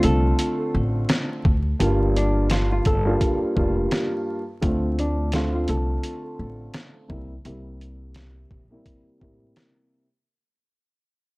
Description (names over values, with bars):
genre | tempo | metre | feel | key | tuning
hip hop, boom-bap hip-hop | 85 BPM | 4/4 | swing 57% on 16ths | unclear | A4 = 439 Hz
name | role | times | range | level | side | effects
flamenco guitar | melody | 0.0-6.2 s | D4 to A4 | -29 LUFS | left 1 dB | high-pass filter, low-pass filter, tape echo
dark upright piano | accompaniment | 0.0-10.0 s | G2 to F4 | -25 LUFS | equal | cassette tape, high-pass filter, low-pass filter
upright bass | bass | 0.0-9.5 s | F1 to D2 | -24 LUFS | equal | none
trip hop sampler-style drum kit | drums | 0.0-9.8 s | hi-hat, kick drum, snare drum | -24 LUFS | equal | none
room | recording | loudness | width
small room reverb | dry, gritty hardware recording, vinyl crackle | -20 LUFS | side -24 dB against mid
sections
0.0-10.3 A section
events
fade-out 0.0-10.3; filter sweep 0.0-10.3; break 7.5-10.3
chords
0.0 Dm7; 1.8 Gm7; 4.6 Dm7; 7.1 C7